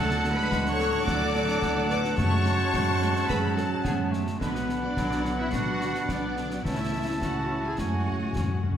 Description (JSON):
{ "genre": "cinematic, heroic adventure film score", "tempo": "108 BPM", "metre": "4/4", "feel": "straight", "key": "F# minor", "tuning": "A4 = 440 Hz", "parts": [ { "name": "rich symphonic violin section", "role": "melody", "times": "0.0-8.7 s", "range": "B4 to D6", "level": "-39 LUFS", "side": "left 3 dB", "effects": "none" }, { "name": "bright clarinet", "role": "second line", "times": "0.0-8.6 s", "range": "F#3 to D4", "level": "-37 LUFS", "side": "left 1 dB", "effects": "none" }, { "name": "hollow concert flute", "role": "second line", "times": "0.0-8.6 s", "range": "G#5 to B5", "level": "-38 LUFS", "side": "left 3 dB", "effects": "none" }, { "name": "warm cor anglais", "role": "second line", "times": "0.0-8.7 s", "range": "C#5 to F#5", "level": "-38 LUFS", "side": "right 1 dB", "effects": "none" }, { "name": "warm symphonic violin section", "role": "second line", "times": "0.0-8.6 s", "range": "B4 to D6", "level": "-38 LUFS", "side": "left 4 dB", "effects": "none" }, { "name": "rich symphonic viola section", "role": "accompaniment", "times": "0.0-8.8 s", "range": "D3 to E4", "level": "-35 LUFS", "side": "equal", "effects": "none" }, { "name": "dark French horn section", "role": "sustained chords", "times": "0.0-8.7 s", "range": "F#3 to B4", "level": "-34 LUFS", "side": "left 6 dB", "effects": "none" }, { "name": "warm trombone section", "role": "sustained chords", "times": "0.0-8.7 s", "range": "G#2 to E4", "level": "-34 LUFS", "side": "right 3 dB", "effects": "none" }, { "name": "clear trumpet", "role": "stabs", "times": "0.0-8.7 s", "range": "F#5 to A5", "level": "-33 LUFS", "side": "right 1 dB", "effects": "none" }, { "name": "rich studio double bass section", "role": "bass", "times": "0.0-8.8 s", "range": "B1 to F#2", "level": "-31 LUFS", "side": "right 3 dB", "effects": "none" }, { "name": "warm symphonic cello section", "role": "bass", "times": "0.0-8.7 s", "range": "B3 to D5", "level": "-34 LUFS", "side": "right 1 dB", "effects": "none" }, { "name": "concert snare drum and concert bass drum", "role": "drums", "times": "0.1-8.6 s", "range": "none", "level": "-34 LUFS", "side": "left 1 dB", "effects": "none" }, { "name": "timpani", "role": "percussion", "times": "2.2-3.0, 7.8-8.8 s", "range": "F#2", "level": "-30 LUFS", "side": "left 2 dB", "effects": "none" } ], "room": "wet recital hall reverb, RT60 1.5 s", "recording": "none", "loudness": "-24 LUFS", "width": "side -9 dB against mid", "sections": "0.0-8.8 A section", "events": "timpani fill 7.8-8.8", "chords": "0.0 D; 2.2 F#madd9; 4.4 Bm; 6.6 A/C#; 7.8 F#madd9" }